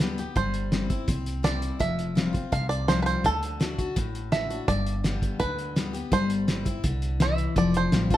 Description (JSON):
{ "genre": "honky-tonk and classic country", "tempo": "167 BPM", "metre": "4/4", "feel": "straight", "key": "unclear", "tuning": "A4 = 441 Hz", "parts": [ { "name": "bluegrass banjo", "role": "melody", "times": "0.0-8.2 s", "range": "A4 to F5", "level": "-29 LUFS", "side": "right 3 dB", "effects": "none" }, { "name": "picked steel-string acoustic guitar", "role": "accompaniment", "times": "0.0-8.2 s", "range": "G2 to G4", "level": "-29 LUFS", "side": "left 4 dB", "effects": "none" }, { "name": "upright bass", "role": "bass", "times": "0.0-8.2 s", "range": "F1 to D2", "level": "-30 LUFS", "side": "equal", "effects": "none" }, { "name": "cloth-damped thuddy drum kit", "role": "drums", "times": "0.0-8.2 s", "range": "hi-hat, kick drum, snare drum", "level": "-27 LUFS", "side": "equal", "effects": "none" } ], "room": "moderate large studio reverb, RT60 1.3 s", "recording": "none", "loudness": "-24 LUFS", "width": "side -13 dB against mid", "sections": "0.0-8.2 A section", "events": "none", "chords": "0.4 C/G; 1.8 Fsus2; 3.2 D; 4.7 G; 6.1 C/G; 7.6 Fsus2" }